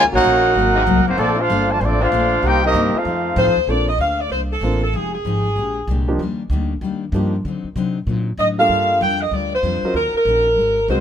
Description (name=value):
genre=jazz, big band swing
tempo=192 BPM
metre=4/4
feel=swing 64% on 8ths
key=Bb major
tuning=A4 = 437 Hz
part: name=mellow trumpet section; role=melody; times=0.0-3.6 s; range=Bb3 to A5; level=-17 LUFS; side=right 1 dB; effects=none
part: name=warm trombone section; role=second line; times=0.0-3.6 s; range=D3 to G4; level=-22 LUFS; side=right 1 dB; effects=none
part: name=picked steel-string acoustic guitar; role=accompaniment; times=0.0-11.0 s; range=Ab2 to C5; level=-25 LUFS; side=left 6 dB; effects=none
part: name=clear trombone section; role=sustained chords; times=0.0-2.9 s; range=C3 to A4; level=-27 LUFS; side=left 1 dB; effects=none
part: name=upright bass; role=bass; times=0.0-11.0 s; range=F1 to D3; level=-22 LUFS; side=equal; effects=none
part: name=warm saxophone section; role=melody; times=3.4-6.0, 8.4-11.0 s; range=Ab4 to G5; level=-18 LUFS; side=equal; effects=none
part: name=warm grand piano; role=accompaniment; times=3.7-11.0 s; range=F3 to Bb4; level=-24 LUFS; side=right 2 dB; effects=none
room=light reverb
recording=minimal, uncompressed stereo recording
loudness=-16 LUFS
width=side -9 dB against mid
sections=0.0-3.7 A section; 3.7-11.0 B section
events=none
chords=0.0 Ebm7; 0.6 Ab9; 1.2 Bbmaj9; 2.4 Cm7; 3.1 F7; 3.7 Bbmaj9; 4.9 Fm9; 5.6 Bb13; 6.2 Ebmaj7; 7.4 D7b9; 8.7 Gm7; 10.0 Ebm7